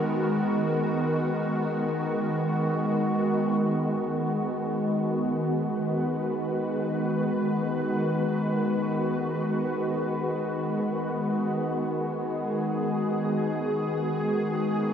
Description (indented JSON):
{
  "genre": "ambient",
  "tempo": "free time",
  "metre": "none",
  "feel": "none",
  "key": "G# minor",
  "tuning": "A4 = 443 Hz",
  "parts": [
    { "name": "evolving wavetable pad", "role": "solo", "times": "0.0-14.9 s", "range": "D#3 to B4", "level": "-25 LUFS", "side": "equal", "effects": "ensemble chorus, built-in reverb, analog delay" }
  ],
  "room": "wet echo chamber reverb, RT60 2.2 s",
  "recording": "echo-heavy mix",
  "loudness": "-25 LUFS",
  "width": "side -8 dB against mid",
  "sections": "0.0-3.6 A section; 3.6-14.9 B section",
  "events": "none",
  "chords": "0.0 G#m7"
}